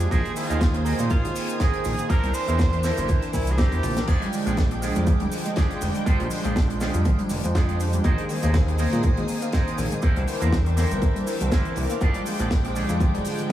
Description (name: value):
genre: nu-disco, nu disco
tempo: 121 BPM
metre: 4/4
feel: swing 55% on 16ths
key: F dorian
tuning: A4 = 438 Hz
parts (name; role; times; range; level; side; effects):
- bright tenor saxophone; melody; 0.0-4.1 s; E4 to C5; -32 LUFS; right 2 dB; tape echo
- warm analog pad; accompaniment; 0.0-13.5 s; Eb3 to G5; -30 LUFS; right 1 dB; chorus, sidechain pumping, analog delay
- string machine, full ensemble; sustained chords; 0.0-13.5 s; Ab3 to Eb6; -33 LUFS; equal; ensemble chorus, sidechain pumping
- fat analog bass; bass; 0.0-13.2 s; D1 to Bb2; -24 LUFS; equal; none
- tight funk drum kit; drums; 0.0-13.5 s; cabasa, crash cymbal, hi-hat, snare drum, toms; -32 LUFS; equal; analog delay
- electric guitar with an envelope filter; riff; 0.1-13.5 s; D4 to Ab5; -34 LUFS; right 3 dB; wide subtle chorus, analog delay
- electronic kick drum; drums; 0.1-13.1 s; none; -22 LUFS; equal; none
- analog pluck; arpeggios; 4.1-13.5 s; D3 to C4; -32 LUFS; left 3 dB; chorus, cassette tape, sidechain pumping, tape echo
room: studio ambience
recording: echo-heavy mix, small room ambience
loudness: -20 LUFS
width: side -12 dB against mid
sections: 0.0-13.5 A section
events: clean electric guitar fill 3.1-4.1; drum fill 3.7-4.1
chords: 0.1 Bb9sus4; 2.1 C9; 4.1 Fm69; 8.0 Bb9sus4; 10.0 C9; 12.0 Fm69